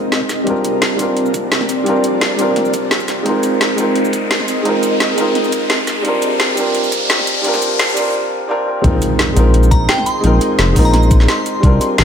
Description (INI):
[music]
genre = liquid drum and bass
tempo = 172 BPM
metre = 4/4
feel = straight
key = Bb mixolydian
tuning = A4 = 440 Hz
[part]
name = felt-muted upright piano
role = accompaniment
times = 0.0-12.0 s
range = G3 to Bb4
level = -17 LUFS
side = right 1 dB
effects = low-pass filter, dub echo
[part]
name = ethereal airy pad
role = sustained chords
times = 0.0-12.0 s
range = C4 to C6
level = -22 LUFS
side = equal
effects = ensemble chorus, built-in reverb, tremolo, sidechain pumping
[part]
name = riser and impact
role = sound effects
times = 0.6-10.2 s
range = none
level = -24 LUFS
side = left 1 dB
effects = none
[part]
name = garage drum kit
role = drums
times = 0.1-12.0 s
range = cabasa, hi-hat, snare drum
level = -18 LUFS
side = equal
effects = overdrive
[part]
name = electronic kick drum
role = drums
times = 0.2-11.7 s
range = none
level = -15 LUFS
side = equal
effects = overdrive, high-pass filter on kick
[part]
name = smooth gliding synth bass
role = bass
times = 8.8-12.0 s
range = F1 to C2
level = -12 LUFS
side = equal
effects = none
[part]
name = glassy synth bell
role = melody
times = 9.7-11.6 s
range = G5 to C6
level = -20 LUFS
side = equal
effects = chorus, analog delay
[sound]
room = moderate echo chamber reverb, RT60 1.4 s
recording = echo-heavy mix, high-pass filter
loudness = -12 LUFS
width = side -8 dB against mid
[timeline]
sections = 0.0-8.8 A section; 8.8-12.0 B section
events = build-up 0.0-8.8; filter sweep on felt piano 0.0-8.8; filter sweep 0.0-8.8; riser 0.6-8.1; break 8.1-8.8; drop 8.8-12.0; impact 8.8-10.2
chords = 0.5 C9sus4; 3.3 Bb9sus4; 6.1 C9sus4; 8.8 Bb9sus4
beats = 0.12 | 0.47 0.82 1.17 1.52 | 1.86 2.21 2.56 2.91 | 3.26 3.61 3.96 4.31 | 4.66 5.00 5.35 5.70 | 6.05 6.40 6.75 7.10 | 7.45 7.79 8.14 8.49 | 8.84 9.19 9.54 9.89 | 10.24 10.59 10.94 11.28 | 11.63 11.98